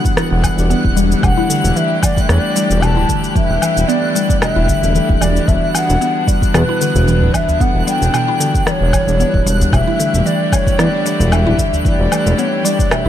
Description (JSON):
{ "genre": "organic downtempo", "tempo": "113 BPM", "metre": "4/4", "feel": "swing 55% on 16ths", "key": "E minor", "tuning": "A4 = 440 Hz", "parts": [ { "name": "mellow tine electric piano", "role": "accompaniment", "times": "0.0-13.1 s", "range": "E3 to B4", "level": "-21 LUFS", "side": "left 3 dB", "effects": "sidechain pumping, digital delay" }, { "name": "rich chamber string section", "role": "sustained chords", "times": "0.0-13.1 s", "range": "D3 to F#5", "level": "-24 LUFS", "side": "left 1 dB", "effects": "sidechain pumping" }, { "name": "mallet-like synth pluck", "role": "arpeggios", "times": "0.0-13.1 s", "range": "B2 to E4", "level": "-20 LUFS", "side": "equal", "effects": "chorus, phaser, digital delay" }, { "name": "electronic kick drum", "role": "drums", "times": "0.0-12.9 s", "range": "none", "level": "-17 LUFS", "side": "equal", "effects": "none" }, { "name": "twinkling granular texture", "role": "texture", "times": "0.0-13.1 s", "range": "F#6", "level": "-27 LUFS", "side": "right 1 dB", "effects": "built-in reverb" }, { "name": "electronic shaker, rim click and woodblock", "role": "drums", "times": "0.1-13.0 s", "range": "none", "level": "-21 LUFS", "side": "left 2 dB", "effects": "none" }, { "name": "smooth synth bass", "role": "bass", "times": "0.3-13.1 s", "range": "D1 to E2", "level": "-15 LUFS", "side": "equal", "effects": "sidechain pumping" }, { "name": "breathy mellow low ney", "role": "melody", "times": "1.2-13.1 s", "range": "B4 to A5", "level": "-19 LUFS", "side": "equal", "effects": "digital delay" }, { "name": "udu", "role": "percussion", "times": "6.9-11.8 s", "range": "none", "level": "-22 LUFS", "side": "equal", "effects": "none" } ], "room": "light reverb", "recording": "none", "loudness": "-12 LUFS", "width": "side -11 dB against mid", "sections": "0.0-13.1 A section", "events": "none", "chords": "0.0 Em9" }